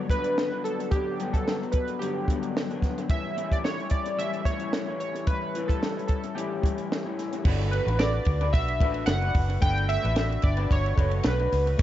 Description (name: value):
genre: indie pop, bedroom pop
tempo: 110 BPM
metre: 4/4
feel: swing 55% on 16ths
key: G lydian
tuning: A4 = 440 Hz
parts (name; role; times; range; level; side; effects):
- electric guitar through a small old amp; accompaniment; 0.0-11.8 s; G2 to B4; -32 LUFS; left 4 dB; analog chorus, vibrato effect, dub echo
- warm analog keys; melody; 0.1-11.7 s; G4 to G5; -30 LUFS; right 1 dB; analog chorus, dub echo
- compact cocktail drum kit; drums; 0.1-11.8 s; crash cymbal, hi-hat, kick drum, ride cymbal, snare drum; -26 LUFS; equal; none
- vintage muted fingered electric bass; bass; 7.5-11.8 s; F#1 to D2; -26 LUFS; equal; none
room: light reverb, small room ambience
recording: echo-heavy mix, nothing above 7.7 kHz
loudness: -24 LUFS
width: side -12 dB against mid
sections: 0.0-7.5 A section; 7.5-11.8 B section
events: none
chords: 0.0 Gmaj7; 3.1 A7; 7.5 Gmaj9